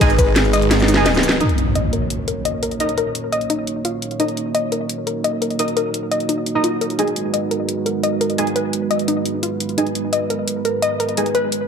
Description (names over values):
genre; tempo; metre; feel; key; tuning
dark technical drum and bass; 172 BPM; 4/4; straight; Eb minor; A4 = 436 Hz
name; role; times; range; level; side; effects
dark analog pad; sustained chords; 0.0-11.7 s; Ab3 to Db5; -23 LUFS; right 3 dB; chorus, sidechain pumping
orchestra-hit-like synth stab; stabs; 0.0-11.3 s; Ab3 to Eb5; -23 LUFS; right 2 dB; built-in reverb, tape echo
phased detuned saw bass; bass; 0.0-1.4 s; Ab1; -18 LUFS; equal; phaser, tube saturation
drum and bass drum kit; drums; 0.0-11.6 s; cabasa, hi-hat, ride cymbal, rim click, snare drum; -22 LUFS; equal; none
warbly dusty pluck; arpeggios; 0.2-11.5 s; Eb4 to Eb5; -22 LUFS; left 3 dB; chorus, sidechain pumping, tape echo
impact; sound effects; 1.4-2.8 s; none; -22 LUFS; equal; none
room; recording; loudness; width
moderate lush hall reverb, RT60 1.7 s; none; -17 LUFS; side -6 dB against mid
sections
0.0-1.4 A section; 1.4-11.7 B section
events
drop 0.0-1.4; drum fill 0.7-1.4; band accent 1.3; impact 1.4-2.8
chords
0.0 Abm; 1.4 Ebm7; 7.0 Abm7